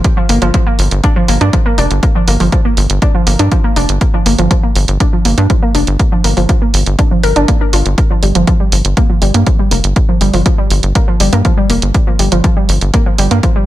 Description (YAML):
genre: melodic techno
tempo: 121 BPM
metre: 4/4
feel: straight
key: unclear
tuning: A4 = 440 Hz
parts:
  - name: electronic hi-hat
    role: drums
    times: 0.0-13.5 s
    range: none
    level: -19 LUFS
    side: right 5 dB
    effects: none
  - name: electronic kick drum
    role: drums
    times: 0.0-13.5 s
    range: none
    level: -13 LUFS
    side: equal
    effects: none
  - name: warbly dusty pluck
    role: arpeggios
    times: 0.2-13.6 s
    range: F3 to Bb4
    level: -15 LUFS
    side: equal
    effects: chorus, sidechain pumping, ping-pong delay
  - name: tight sequencer bass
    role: bass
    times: 0.3-13.4 s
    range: F1 to G2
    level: -12 LUFS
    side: equal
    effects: tube saturation, sidechain pumping
room: digital ambience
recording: none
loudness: -9 LUFS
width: side -14 dB against mid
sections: 0.0-13.7 A section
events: none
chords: 0.0 Bb5; 8.0 G7(no3)